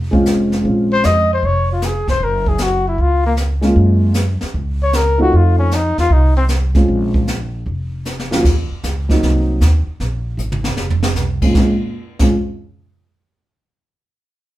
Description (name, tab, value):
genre	jazz, small-group swing and bop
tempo	154 BPM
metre	4/4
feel	swing 67% on 8ths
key	Bb minor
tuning	A4 = 441 Hz
part	upright bass	bass	0.0-12.3 s	F1 to Gb2	-17 LUFS	equal	none
part	dark baby grand piano	accompaniment	0.1-1.3, 3.6-12.3 s	Eb2 to F4	-16 LUFS	equal	none
part	jazz brush drum kit	drums	0.1-12.3 s	brushed snare drum, crash cymbal, hi-hat, kick drum, snare drum, toms	-20 LUFS	right 1 dB	none
part	mellow trumpet	melody	0.9-6.4 s	Bb3 to Eb5	-17 LUFS	left 2 dB	none
room	moderate studio reverb, RT60 0.6 s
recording	band playing live in one room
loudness	-13 LUFS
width	side -15 dB against mid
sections	0.0-8.4 A section; 8.4-11.6 B section; 11.6-13.1 C section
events	drum fill 8.1-8.4, 10.4-11.2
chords	0.0 Bbm9; 2.2 Gbmaj7; 5.3 F7; 6.9 Bbm9; 7.7 Ebm9/F; 8.4 Ebm7; 9.2 Cm7b5; 10.0 Absus2; 10.8 F5; 11.6 Bbm7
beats	0.27 | 0.66 1.05 1.43 1.82 | 2.21 2.60 2.99 3.38 | 3.77 4.16 4.55 4.93 | 5.32 5.71 6.10 6.49 | 6.88 7.27 7.66 8.05 | 8.44 8.83 9.22 9.61 | 10.00 10.39 10.78 11.17 | 11.56 11.95